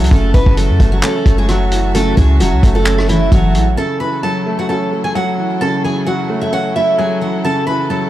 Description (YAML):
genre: hip hop, trap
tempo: 131 BPM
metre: 4/4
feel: half-time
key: F# minor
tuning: A4 = 439 Hz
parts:
  - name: picked steel-string acoustic guitar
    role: melody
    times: 0.0-8.1 s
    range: E3 to B5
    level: -17 LUFS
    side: right 1 dB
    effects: none
  - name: dark baby grand piano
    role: accompaniment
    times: 0.0-8.1 s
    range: C#3 to C#4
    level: -19 LUFS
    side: equal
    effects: none
  - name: clear symphonic string section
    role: sustained chords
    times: 0.0-8.1 s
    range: F#3 to A5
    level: -27 LUFS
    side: left 1 dB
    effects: none
  - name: clean 808-style bass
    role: bass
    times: 0.0-3.8 s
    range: E1 to F#2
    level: -14 LUFS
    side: equal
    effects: none
  - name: vintage drum kit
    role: drums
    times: 0.0-3.7 s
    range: handclaps, hi-hat, kick drum, rim click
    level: -15 LUFS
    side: equal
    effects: none
room: small room ambience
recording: dark, warm production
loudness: -12 LUFS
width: side -14 dB against mid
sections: 0.0-3.8 A section; 3.8-8.1 B section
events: none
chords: 0.0 F#m7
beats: | 0.11 0.57 1.03 1.49 | 1.95 2.40 2.86 3.32 | 3.78 4.24 4.69 5.15 | 5.61 6.07 6.53 6.98 | 7.44 7.90